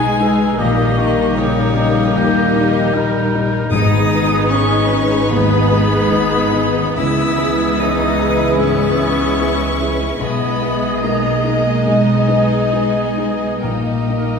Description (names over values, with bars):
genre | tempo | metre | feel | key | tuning
cinematic | 64-78 BPM | 4/4 | rubato | G# harmonic minor | A4 = 441 Hz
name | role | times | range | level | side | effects
rich studio violin section | melody | 0.0-14.4 s | G#4 to D#5 | -25 LUFS | left 2 dB | none
rich violin | melody | 0.0-14.4 s | C#5 to E6 | -25 LUFS | left 4 dB | none
clear clarinet | second line | 0.0-14.4 s | G3 to B3 | -24 LUFS | equal | none
mellow hollow concert flute | second line | 0.0-14.4 s | C#6 to G6 | -27 LUFS | equal | none
rich studio violin section | second line | 0.0-14.4 s | D#4 to E4 | -26 LUFS | left 1 dB | none
warm oboe | second line | 0.0-14.4 s | G4 to A#4 | -28 LUFS | equal | none
dark baby grand piano | accompaniment | 0.0-14.4 s | A#1 to D#5 | -23 LUFS | left 3 dB | none
rich studio viola section | accompaniment | 0.0-14.4 s | G3 to A#3 | -24 LUFS | equal | none
dark French horn section | sustained chords | 0.0-14.4 s | E3 to D#5 | -22 LUFS | left 1 dB | none
concert harp | arpeggios | 0.0-14.4 s | G#2 to E6 | -25 LUFS | left 5 dB | none
rich studio cello section | bass | 0.0-14.4 s | C#3 to E4 | -22 LUFS | equal | none
rich studio double bass section | bass | 0.0-14.4 s | G#1 to C#2 | -22 LUFS | right 2 dB | none
timpani | percussion | 3.7-4.9 s | G#2 | -20 LUFS | left 1 dB | none
room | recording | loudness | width
wet recital hall reverb, RT60 1.5 s | heard from further back in the room | -13 LUFS | side -6 dB against mid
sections
0.0-14.4 A section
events
none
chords
0.0 G#m/B; 0.6 D#/A#; 3.7 G#m; 7.0 C#m7; 10.2 G#m/B; 13.6 D#/A#